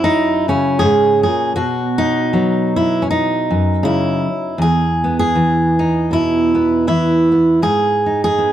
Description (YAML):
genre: folk, solo fingerstyle acoustic guitar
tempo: 79 BPM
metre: 4/4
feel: swing 57% on 8ths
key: E major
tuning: A4 = 440 Hz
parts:
  - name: fingerpicked steel-string acoustic guitar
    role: solo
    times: 0.0-8.5 s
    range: E2 to G#4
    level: -13 LUFS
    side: right 1 dB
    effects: none
room: light reverb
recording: dark, warm production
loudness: -13 LUFS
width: side -11 dB against mid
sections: 0.0-4.6 A section; 4.6-8.5 B section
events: none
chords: 0.0 F#7; 1.6 B; 4.6 E; 7.6 G#m